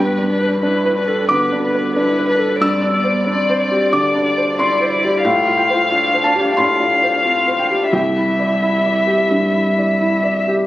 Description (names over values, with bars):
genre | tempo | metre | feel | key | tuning
neoclassical piano and strings | 86-93 BPM | 4/4 | rubato | C major | A4 = 439 Hz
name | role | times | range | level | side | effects
muted violin | melody | 0.0-10.5 s | B4 to F5 | -17 LUFS | left 2 dB | none
muted cello | second line | 0.0-10.3 s | B3 to F4 | -26 LUFS | right 2 dB | none
felt-muted upright piano | accompaniment | 0.0-10.7 s | C2 to E6 | -17 LUFS | equal | none
room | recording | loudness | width
light reverb | recorded on a phone in the room, studio reverb, compression | -14 LUFS | side -15 dB against mid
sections
0.0-10.7 A section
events
none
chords
0.0 Gadd9; 2.6 Cadd9/G; 5.2 Fadd9/A; 7.9 Cadd9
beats
0.62 1.30 1.96 | 2.61 3.26 3.92 4.58 | 5.24 5.90 6.57 7.24 | 7.92 8.62 9.31 10.00